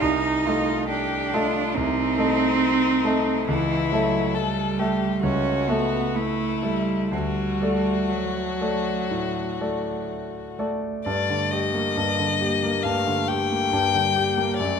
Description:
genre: classical, slow romantic movement for piano trio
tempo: 59-72 BPM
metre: 4/4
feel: rubato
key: unclear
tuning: A4 = 439 Hz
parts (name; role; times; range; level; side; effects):
- warm violin; melody; 0.0-14.8 s; Eb4 to G5; -26 LUFS; left 9 dB; none
- rich cello; second line; 0.0-14.8 s; E3 to Eb4; -26 LUFS; right 4 dB; none
- clear concert grand piano; accompaniment; 0.0-14.8 s; C2 to E5; -25 LUFS; equal; none
room: wet recital hall reverb, RT60 1.6 s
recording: none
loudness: -21 LUFS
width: side -6 dB against mid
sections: 0.0-11.1 A section; 11.1-14.8 B section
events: none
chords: 0.0 Adim/C; 3.5 A7/C#; 7.1 D; 11.1 Gm

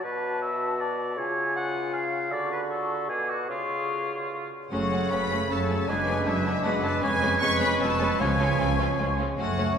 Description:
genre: classical, dramatic, fast romantic movement for symphony orchestra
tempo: 154 BPM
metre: 3/4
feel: rubato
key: unclear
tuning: A4 = 437 Hz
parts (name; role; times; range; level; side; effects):
- bright clarinet; second line; 0.0-9.8 s; E#4 to C#5; -34 LUFS; equal; none
- mellow large flute ensemble; second line; 0.0-9.8 s; G#5 to D6; -34 LUFS; left 5 dB; none
- warm oboe; second line; 0.0-9.8 s; E4 to F#5; -30 LUFS; right 1 dB; none
- warm bassoon; accompaniment; 0.0-9.8 s; B2 to A3; -33 LUFS; equal; none
- warm studio violin section; melody; 4.7-9.8 s; E5 to C#6; -32 LUFS; left 3 dB; none
- warm symphonic violin section; second line; 4.7-9.7 s; B3 to F#4; -35 LUFS; left 1 dB; none
- rich symphonic viola section; accompaniment; 4.7-9.7 s; F#3 to C#4; -33 LUFS; right 1 dB; none
- mellow French horn section; sustained chords; 4.7-9.8 s; E#3 to D4; -34 LUFS; left 3 dB; none
- warm trumpet section; stabs; 4.7-9.8 s; B4 to C#5; -33 LUFS; right 4 dB; none
- rich symphonic cello section; bass; 4.7-9.7 s; C#2 to F#2; -32 LUFS; right 2 dB; none
- rich symphonic double bass section; bass; 4.7-9.7 s; E#1 to C#2; -32 LUFS; right 2 dB; none
- timpani; percussion; 8.2-8.8 s; C#3; -34 LUFS; right 3 dB; none
room: wet cathedral reverb, RT60 4.3 s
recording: recorded in a church or concert hall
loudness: -24 LUFS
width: side -7 dB against mid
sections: 0.0-4.7 A section; 4.7-9.8 B section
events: none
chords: 0.0 Bm7; 1.2 C#; 2.3 Dmaj7; 3.1 Bm7; 3.5 C#; 4.7 F#m; 5.9 G#m7b5/F#; 7.0 C#7/E#; 8.2 C#

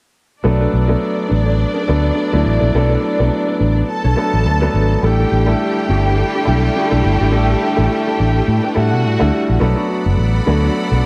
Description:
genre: disco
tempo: 105 BPM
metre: 4/4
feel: swing 56% on 16ths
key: B minor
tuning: A4 = 440 Hz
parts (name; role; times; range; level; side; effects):
- clear symphonic violin section; second line; 0.4-9.6 s; D4 to A5; -24 LUFS; equal; none
- warm concert grand piano; accompaniment; 0.4-11.1 s; F#3 to A4; -21 LUFS; equal; none
- fingered electric bass; bass; 0.4-11.0 s; F#1 to B2; -18 LUFS; equal; none
- mellow electric guitar; accompaniment; 0.5-11.0 s; D4 to C#5; -27 LUFS; equal; none
- clear symphonic string section; sustained chords; 5.0-11.1 s; D3 to B5; -27 LUFS; equal; none
room: little or no reverb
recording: dry, close 1970s-style studio recording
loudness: -16 LUFS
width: mono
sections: 0.5-9.6 A section; 9.6-11.1 B section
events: none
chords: 0.5 Bm7; 5.0 A7sus4; 9.6 Bm7

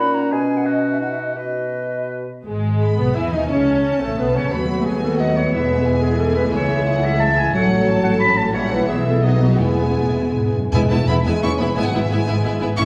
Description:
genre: classical, dramatic, fast romantic movement for symphony orchestra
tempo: 159-182 BPM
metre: 3/4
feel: rubato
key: E major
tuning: A4 = 444 Hz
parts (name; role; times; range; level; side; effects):
- clear oboe; second line; 0.0-2.3 s; F#4 to B4; -32 LUFS; equal; none
- hollow silver concert flute; second line; 0.0-2.1 s; D#5 to B5; -27 LUFS; equal; none
- mellow clarinet; second line; 0.0-10.4 s; C#4 to B5; -24 LUFS; equal; none
- mellow bassoon; accompaniment; 0.0-2.3 s; A#2 to B2; -28 LUFS; equal; none
- warm symphonic violin section; second line; 2.5-12.8 s; G#3 to E5; -30 LUFS; equal; none
- rich symphonic viola section; accompaniment; 2.5-12.8 s; E3 to E4; -26 LUFS; equal; none
- clear French horn section; sustained chords; 2.5-12.8 s; E3 to G#4; -26 LUFS; equal; none
- warm symphonic cello section; bass; 2.5-12.8 s; C#2 to E3; -27 LUFS; equal; none
- warm symphonic double bass section; bass; 2.5-12.8 s; E1 to E2; -26 LUFS; equal; none
- warm symphonic violin section; melody; 2.8-12.8 s; D#5 to C#6; -32 LUFS; equal; none
- timpani; percussion; 9.6-11.2 s; E2; -26 LUFS; equal; none
room: wet recital hall reverb, RT60 1.5 s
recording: heard from further back in the room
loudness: -19 LUFS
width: mono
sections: 0.0-2.5 A section; 2.5-10.7 B section; 10.7-12.8 C section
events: none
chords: 0.3 B; 2.5 E/G#; 3.5 A/C#; 4.5 B7/D#; 5.5 E; 6.5 C#m; 7.5 F#m/A; 8.5 A#dim7; 8.9 E/B; 9.2 B; 9.6 E; 10.7 E5; 11.8 E/G#

